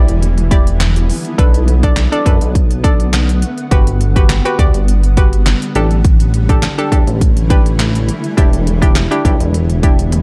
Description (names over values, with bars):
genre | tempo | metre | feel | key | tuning
dance-pop | 103 BPM | 4/4 | straight | unclear | A4 = 440 Hz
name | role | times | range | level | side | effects
hollow square pluck | accompaniment | 0.0-10.2 s | D4 to D5 | -22 LUFS | equal | chorus, sidechain pumping
shimmering ambient pad | sustained chords | 0.0-10.2 s | D3 to F#5 | -26 LUFS | equal | chorus, built-in reverb, sidechain pumping
chorused synth bass | bass | 0.0-10.2 s | E1 to F#2 | -16 LUFS | equal | sidechain pumping
pop drum kit | drums | 0.1-10.2 s | handclaps, hi-hat, kick drum, snare drum, toms | -15 LUFS | equal | none
room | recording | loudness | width
digital ambience | dark, warm production | -13 LUFS | mono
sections
0.0-10.2 A section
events
none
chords
0.0 Em7; 1.4 Bm7; 3.7 Gmaj7; 5.8 A7sus4; 8.4 Em7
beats
0.22 0.81 | 1.39 1.97 2.55 3.13 | 3.72 4.30 4.88 5.46 | 6.05 6.63 7.21 7.79 | 8.38 8.96 9.54 10.12